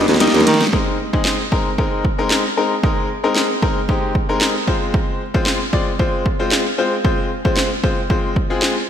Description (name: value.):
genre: dance-pop.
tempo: 114 BPM.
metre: 4/4.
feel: straight.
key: unclear.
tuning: A4 = 440 Hz.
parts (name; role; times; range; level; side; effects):
bright grand piano; accompaniment; 0.0-8.7 s; G3 to D5; -19 LUFS; left 2 dB; sidechain pumping.
sweeping resonant pad; sustained chords; 0.0-0.7 s; G4 to C6; -33 LUFS; right 1 dB; none.
breathy baritone saxophone; bass; 0.0-0.6 s; Eb2 to Eb3; -16 LUFS; right 1 dB; sidechain pumping.
house drum kit; drums; 0.0-8.8 s; handclaps, hi-hat, kick drum, snare drum; -18 LUFS; right 1 dB; overdrive.
room: moderate lush hall reverb, RT60 2.4 s.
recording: bright 1980s-style digital production.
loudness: -15 LUFS.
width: side -9 dB against mid.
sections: 0.7-8.9 A section.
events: drum fill 0.0-0.7.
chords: 0.0 Eb; 0.7 Abadd9; 4.7 Fm.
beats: 0.20 | 0.73 1.26 1.78 2.31 | 2.84 3.36 3.89 4.42 | 4.94 5.47 5.99 6.52 | 7.05 7.57 8.10 8.62.